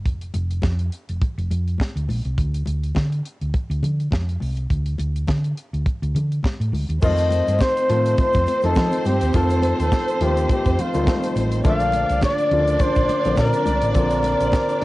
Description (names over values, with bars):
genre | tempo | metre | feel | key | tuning
disco | 104 BPM | 4/4 | swing 56% on 16ths | unclear | A4 = 439 Hz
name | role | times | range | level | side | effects
hollow-body short-scale fingered electric bass | bass | 0.0-14.8 s | F1 to F3 | -22 LUFS | equal | none
tight funk drum kit | drums | 0.1-14.8 s | crash cymbal, hi-hat, kick drum, snare drum | -23 LUFS | equal | cassette tape
congas | percussion | 0.3-14.7 s | none | -33 LUFS | left 3 dB | none
breathy flugelhorn | melody | 7.0-14.8 s | F4 to F5 | -22 LUFS | left 1 dB | cassette tape
dark studio string section | second line | 7.0-14.8 s | C4 to D5 | -24 LUFS | right 1 dB | cassette tape
warm baby grand piano | accompaniment | 7.0-14.8 s | C#3 to F4 | -25 LUFS | left 3 dB | cassette tape
dark French horn section | sustained chords | 7.0-14.8 s | Bb2 to D5 | -32 LUFS | right 3 dB | none
egg shaker | percussion | 7.0-14.8 s | none | -52 LUFS | right 6 dB | none
room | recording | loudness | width
small room reverb | home recording on cassette, nothing above 10.4 kHz | -18 LUFS | side -18 dB against mid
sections
0.0-7.0 A section; 7.0-14.8 B section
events
none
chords
0.0 N.C.; 7.0 F7; 11.6 Bbmaj7